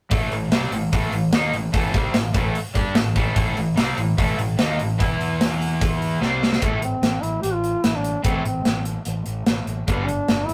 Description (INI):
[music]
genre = hard rock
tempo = 148 BPM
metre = 4/4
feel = straight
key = A minor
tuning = A4 = 435 Hz
[part]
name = cranked stack guitar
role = riff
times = 0.1-10.0 s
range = G2 to G4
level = -30 LUFS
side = equal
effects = overdrive
[part]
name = overdriven electric guitar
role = riff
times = 0.1-10.1 s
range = G2 to G4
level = -28 LUFS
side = equal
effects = none
[part]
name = fuzz fingered electric bass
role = bass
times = 0.1-10.5 s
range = G1 to G2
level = -29 LUFS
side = equal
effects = overdrive
[part]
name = big rock drum kit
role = drums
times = 0.1-10.5 s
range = hi-hat, kick drum, snare drum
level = -25 LUFS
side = equal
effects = none
[part]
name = mellow duduk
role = melody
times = 6.6-10.5 s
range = A3 to G4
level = -28 LUFS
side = equal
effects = none
[sound]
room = light reverb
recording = rough rehearsal-room recording, tube saturation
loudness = -22 LUFS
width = mono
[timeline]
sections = 0.1-6.6 A section; 6.6-10.5 B section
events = drum fill 6.2-6.6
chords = 0.1 Am; 5.0 E5; 6.2 C5; 6.6 Am; 9.9 G